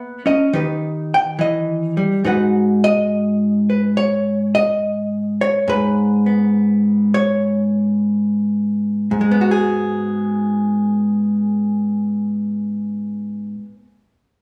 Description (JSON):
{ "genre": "solo jazz", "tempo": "70 BPM", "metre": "4/4", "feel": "swing 68% on 8ths", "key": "G# minor", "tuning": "A4 = 440 Hz", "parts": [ { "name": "hollow-body jazz guitar", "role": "solo", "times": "0.0-13.9 s", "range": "G#2 to G5", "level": "-18 LUFS", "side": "equal", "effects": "none" } ], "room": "wet large studio reverb, RT60 0.9 s", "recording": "band playing live in one room, small room ambience", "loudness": "-18 LUFS", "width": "mono", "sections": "0.0-9.1 A section; 9.1-12.5 B section", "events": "none", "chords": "0.0 A#m7b5; 0.5 D#; 2.2 G#m7" }